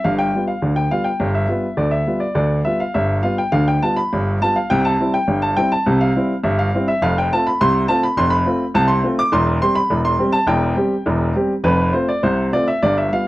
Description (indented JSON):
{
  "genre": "ragtime piano",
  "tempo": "103 BPM",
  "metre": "2/4",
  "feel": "straight",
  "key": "C major",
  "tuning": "A4 = 443 Hz",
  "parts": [
    { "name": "warm upright piano", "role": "solo", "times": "0.0-13.3 s", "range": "E1 to D6", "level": "-15 LUFS", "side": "equal", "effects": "none" }
  ],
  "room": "little or no reverb",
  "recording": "dry, close 1970s-style studio recording, faint mains hum",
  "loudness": "-15 LUFS",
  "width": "side -17 dB against mid",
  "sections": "0.0-13.3 A section",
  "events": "none",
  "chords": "0.0 G7; 4.7 C; 7.0 F; 9.3 C/E; 11.7 F",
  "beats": "| 0.04 0.62 | 1.20 1.78 | 2.37 2.95 | 3.53 4.11 | 4.69 5.27 | 5.85 6.43 | 7.01 7.59 | 8.17 8.75 | 9.33 9.91 | 10.49 11.07 | 11.65 12.23 | 12.81"
}